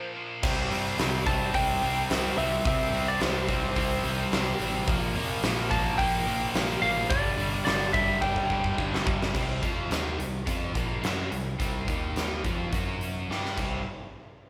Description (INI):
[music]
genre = hard rock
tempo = 108 BPM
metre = 4/4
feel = straight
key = unclear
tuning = A4 = 437 Hz
[part]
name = lightly driven lead guitar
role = melody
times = 0.0-9.0 s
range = C5 to A5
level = -32 LUFS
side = equal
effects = none
[part]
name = cranked stack guitar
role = riff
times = 0.0-13.8 s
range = G2 to G4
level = -36 LUFS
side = equal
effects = overdrive
[part]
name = overdriven semi-hollow guitar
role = riff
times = 0.4-13.8 s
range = G2 to G4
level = -35 LUFS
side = equal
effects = none
[part]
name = tight distorted guitar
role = riff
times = 0.4-9.3 s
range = G2 to C4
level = -37 LUFS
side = equal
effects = distortion
[part]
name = fingered electric bass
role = bass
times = 0.4-13.8 s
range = G1 to G2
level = -38 LUFS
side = equal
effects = none
[part]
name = huge arena drum kit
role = drums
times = 0.4-13.7 s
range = crash cymbal, hi-hat, kick drum, snare drum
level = -32 LUFS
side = equal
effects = none
[sound]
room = moderate large studio reverb, RT60 1.2 s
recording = band playing live in one room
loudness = -28 LUFS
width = mono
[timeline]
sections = 0.0-9.3 A section; 9.3-13.9 B section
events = drum fill 8.2-9.3, 13.3-13.9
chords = 0.4 C5; 4.9 Bb5; 7.1 G5; 9.3 C5; 11.9 Eb5; 12.4 F5; 12.7 F#5; 13.3 G5; 13.6 C5; 13.9 N.C.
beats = | 0.43 0.98 1.54 2.10 | 2.65 3.21 3.77 4.32 | 4.88 5.44 5.99 6.55 | 7.11 7.66 8.22 8.78 | 9.34 9.90 10.46 11.03 | 11.59 12.16 12.72 13.29